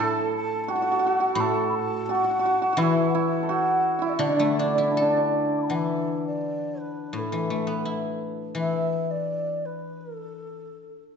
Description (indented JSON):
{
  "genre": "chinese traditional, Chinese chamber ensemble",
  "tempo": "85 BPM",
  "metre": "4/4",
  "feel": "rubato",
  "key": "D gong mode",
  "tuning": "A4 = 440 Hz",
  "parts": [
    { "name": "mellow xiao", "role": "melody", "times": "0.0-11.0 s", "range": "A4 to D6", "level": "-28 LUFS", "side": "left 1 dB", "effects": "none" },
    { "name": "hammered dulcimer", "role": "second line", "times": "0.0-8.9 s", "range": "D4 to A4", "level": "-26 LUFS", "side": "right 3 dB", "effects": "none" },
    { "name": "guzheng", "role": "accompaniment", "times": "0.0-10.7 s", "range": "A2 to D5", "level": "-28 LUFS", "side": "left 3 dB", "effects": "none" }
  ],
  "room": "wet scoring stage reverb, RT60 1.5 s",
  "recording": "dark, warm production, nothing above 8.0 kHz",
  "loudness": "-22 LUFS",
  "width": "side -6 dB against mid",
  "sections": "0.0-5.7 A section; 5.7-11.2 B section",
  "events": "none",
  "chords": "none"
}